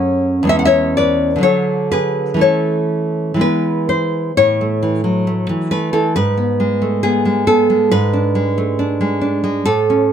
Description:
romantic piece for solo classical guitar; 58-70 BPM; 2/4; rubato; A major; A4 = 435 Hz
nylon-string guitar; solo; 0.0-10.1 s; E2 to F#5; -14 LUFS; equal
light reverb; close, detailed microphones; -14 LUFS; side -8 dB against mid
0.0-4.4 A section; 4.4-10.1 B section
0.5 C#m/E; 1.4 Bm/D; 2.4 A/E; 3.4 E; 4.4 A; 6.2 G#m; 7.9 G#dim

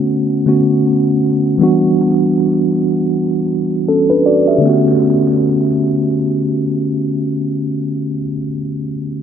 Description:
R&B; 79 BPM; 4/4; swing 58% on 16ths; B minor; A4 = 440 Hz
mellow tine electric piano; solo; 0.0-9.2 s; D3 to E5; -13 LUFS; equal; medium stereo tremolo, low-pass filter, analog delay
moderate plate reverb, RT60 3.1 s; echo-heavy mix; -12 LUFS; side -8 dB against mid
0.0-4.6 A section; 4.6-7.7 B section
filter sweep on tine electric piano 0.0-4.6
0.0 Bm7; 1.6 Em9; 4.6 Bm7

